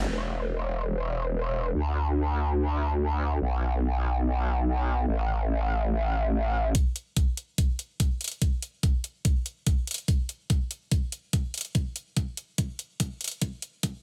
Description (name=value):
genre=heavy wobble dubstep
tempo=144 BPM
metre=4/4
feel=half-time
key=unclear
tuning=A4 = 439 Hz
part: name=growl bass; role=bass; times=0.0-6.7 s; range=E1 to D2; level=-27 LUFS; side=equal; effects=chorus, overdrive
part: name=dubstep drum kit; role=drums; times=0.1-0.2, 6.7-13.9 s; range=crash cymbal, hi-hat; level=-34 LUFS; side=equal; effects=low-pass filter on hats, low-pass filter on snare, low-pass filter on cymbals
part: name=electronic kick drum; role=drums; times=6.7-13.9 s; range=none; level=-27 LUFS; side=equal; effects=none
room=digital ambience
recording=high-pass filter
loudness=-28 LUFS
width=mono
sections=0.1-6.7 A section; 6.7-14.0 B section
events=build-up 6.7-14.0; filter sweep 6.7-14.0; drum fill 13.4-14.0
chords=none